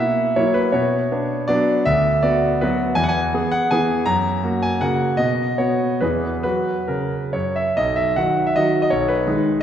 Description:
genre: classical, romantic triple-time dance for piano with dotted rhythms.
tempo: 128-181 BPM.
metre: 3/4.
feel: rubato.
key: B major.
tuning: A4 = 440 Hz.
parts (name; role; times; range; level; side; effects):
bright concert grand piano; solo; 0.0-9.6 s; B1 to A#5; -17 LUFS; equal; none.
room: wet concert hall reverb, RT60 2.0 s.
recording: heard from further back in the room.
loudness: -17 LUFS.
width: side -9 dB against mid.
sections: 0.0-7.8 A section; 7.8-9.6 B section.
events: none.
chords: 0.0 F#7/B; 0.7 Bm; 1.9 Bm/D; 3.0 E; 4.1 F#; 5.2 B; 6.0 E; 6.4 F#; 7.8 B; 8.9 G#m/B.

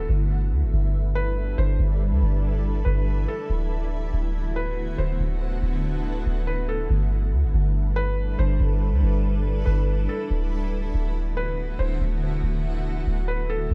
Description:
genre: hip hop, atmospheric cloud-rap.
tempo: 141 BPM.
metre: 4/4.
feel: half-time.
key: G major.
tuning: A4 = 440 Hz.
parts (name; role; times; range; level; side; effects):
felt-muted upright piano; melody; 0.0-13.7 s; A4 to C5; -35 LUFS; equal; low-pass filter, analog delay.
granular cloud pad; sustained chords; 0.0-13.7 s; D3 to B4; -34 LUFS; equal; built-in reverb.
soft 808-style bass; bass; 0.0-13.7 s; D1 to D2; -25 LUFS; equal; none.
room: small room ambience.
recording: dark, warm production.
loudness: -24 LUFS.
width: mono.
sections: 0.0-6.9 A section; 6.9-13.7 B section.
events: none.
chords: 0.1 G6; 3.5 D6; 6.9 G6; 10.3 D6.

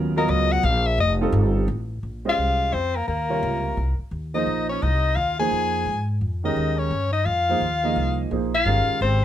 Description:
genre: jazz.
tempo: 172 BPM.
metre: 3/4.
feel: swing 65% on 8ths.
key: Bb dorian.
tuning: A4 = 440 Hz.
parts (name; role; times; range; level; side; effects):
warm concert grand piano; accompaniment; 0.0-9.2 s; C3 to Eb5; -26 LUFS; right 4 dB; none.
upright bass; bass; 0.0-9.2 s; F1 to Ab2; -24 LUFS; equal; none.
bright soprano saxophone; melody; 0.2-9.2 s; Bb4 to Ab5; -24 LUFS; left 4 dB; none.
breathy alto saxophone; second line; 2.3-9.2 s; Bb3 to Ab4; -28 LUFS; right 1 dB; none.
room: light reverb.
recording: none.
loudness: -20 LUFS.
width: side -11 dB against mid.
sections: 0.0-2.0 A section; 2.0-9.2 B section.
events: soprano saxophone solo 0.0-2.0.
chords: 0.0 Abm11 (rootless); 1.0 F9; 2.0 Bb9sus4.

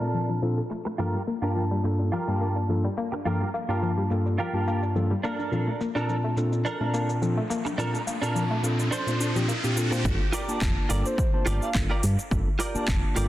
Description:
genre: nu-disco, nu disco.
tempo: 106 BPM.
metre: 4/4.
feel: swing 54% on 16ths.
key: G minor.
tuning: A4 = 440 Hz.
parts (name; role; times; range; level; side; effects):
mellow tine electric piano; accompaniment; 0.0-13.3 s; G2 to A5; -27 LUFS; equal; sidechain pumping.
analog pluck; arpeggios; 0.0-10.0 s; F3 to A4; -32 LUFS; left 3 dB; chorus, sidechain pumping, analog delay.
direct-recorded clean electric guitar; riff; 0.0-13.3 s; D4 to D5; -32 LUFS; right 3 dB; ensemble chorus, low-pass filter, analog delay.
house drum kit; drums; 0.1-13.3 s; handclaps, hi-hat, shaker; -36 LUFS; left 1 dB; overdrive.
riser; sound effects; 6.9-10.1 s; none; -34 LUFS; equal; none.
fingered electric bass with an envelope filter; bass; 10.1-13.3 s; F1 to G2; -26 LUFS; equal; tube saturation, sidechain pumping.
electronic kick drum; drums; 10.1-13.0 s; none; -27 LUFS; equal; overdrive.
soft octave-layered synth lead; melody; 11.1-11.8 s; C5 to F5; -35 LUFS; equal; chorus, phaser, analog delay.
room: light reverb.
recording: dense, heavily limited modern master, low-pass filter.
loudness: -24 LUFS.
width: side -14 dB against mid.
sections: 0.0-10.1 A section; 10.1-13.3 B section.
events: filter sweep on clean electric guitar 0.0-10.1; filter sweep on synth arpeggio sound 0.0-10.1; filter sweep 0.0-10.1; riser 6.9-10.1; drop 10.1-13.3.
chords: 0.0 Bbmaj7; 1.0 Gm7; 5.2 Bbmaj7; 10.1 Gm7.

